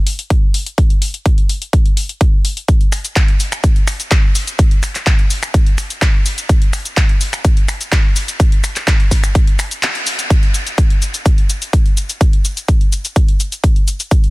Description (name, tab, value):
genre	house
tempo	126 BPM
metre	4/4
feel	straight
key	none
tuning	none
part	big-room dance drum kit	drums	0.1-14.3 s	finger snaps, handclaps, hi-hat, shaker	-20 LUFS	left 1 dB	none
part	electronic kick drum	drums	0.3-14.2 s	none	-12 LUFS	equal	none
room	little or no reverb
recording	dense, heavily limited modern master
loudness	-12 LUFS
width	side -22 dB against mid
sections	0.0-10.3 A section; 10.3-14.3 B section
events	break 9.8-10.3; band accent 9.8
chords	none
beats	0.30 | 0.78 1.26 1.73 2.21 | 2.69 3.16 3.64 4.11 | 4.59 5.07 5.54 6.02 | 6.50 6.97 7.45 7.92 | 8.40 8.88 9.35 9.83 | 10.30 10.78 11.26 11.73 | 12.21 12.69 13.16 13.64 | 14.11